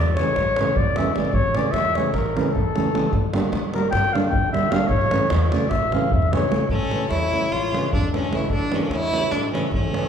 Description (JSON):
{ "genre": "balkan folk, Balkan wedding band", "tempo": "302 BPM (eighths)", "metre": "9/8", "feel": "straight", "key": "A phrygian dominant", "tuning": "A4 = 437 Hz", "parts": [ { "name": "dark trumpet", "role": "second line", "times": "0.0-10.1 s", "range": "G4 to G5", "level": "-24 LUFS", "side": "left 3 dB", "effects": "none" }, { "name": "upright bass", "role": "bass", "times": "0.0-10.1 s", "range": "G1 to E2", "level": "-27 LUFS", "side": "equal", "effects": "none" }, { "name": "davul", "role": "percussion", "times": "0.1-10.1 s", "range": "none", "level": "-24 LUFS", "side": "equal", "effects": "none" }, { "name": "nylon-string guitar", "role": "accompaniment", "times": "0.2-10.1 s", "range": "C#3 to D4", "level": "-25 LUFS", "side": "right 2 dB", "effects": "none" }, { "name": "bright fiddle", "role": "melody", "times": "6.7-10.1 s", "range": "Bb3 to F4", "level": "-24 LUFS", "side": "equal", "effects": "none" } ], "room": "wet large studio reverb, RT60 1.4 s", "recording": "band playing live in one room", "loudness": "-19 LUFS", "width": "side -8 dB against mid", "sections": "0.0-6.7 A section; 6.7-10.1 B section", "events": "trumpet solo 0.0-6.7", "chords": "0.0 A; 3.1 Gm; 4.9 A", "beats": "0.15 0.34 0.54 0.74 0.94 1.14 | 1.34 1.54 1.74 1.93 2.13 2.33 2.53 2.73 2.92 | 3.12 3.32 3.52 3.72 3.92 4.11 4.31 4.51 4.71 | 4.91 5.11 5.30 5.50 5.70 5.90 6.10 6.30 6.50 | 6.69 6.89 7.09 7.29 7.49 7.69 7.89 8.09 8.29 | 8.49 8.69 8.89 9.09 9.29 9.49 9.69 9.89" }